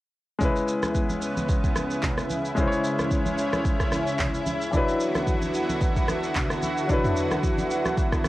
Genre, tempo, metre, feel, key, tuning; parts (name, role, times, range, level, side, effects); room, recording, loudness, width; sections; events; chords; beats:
amapiano; 111 BPM; 4/4; swing 55% on 16ths; C# phrygian; A4 = 445 Hz
clear grand piano; accompaniment; 0.4-8.3 s; E3 to C#5; -28 LUFS; left 2 dB; cassette tape
lush unison pad; sustained chords; 0.4-8.3 s; C#3 to F#4; -28 LUFS; right 1 dB; chorus, sidechain pumping, cassette tape
deep house drum kit; drums; 0.4-8.3 s; handclaps, kick drum, rim click, shaker, toms; -26 LUFS; equal; cassette tape
congas; percussion; 0.4-8.3 s; -34 LUFS; right 1 dB
light reverb; home recording on cassette; -22 LUFS; side -16 dB against mid
0.4-8.3 A section
0.4 C#m7; 4.7 D69
| 0.41 0.95 1.49 2.03 | 2.57 3.11 3.65 4.19 | 4.73 5.27 5.81 6.36 | 6.89 7.44 7.98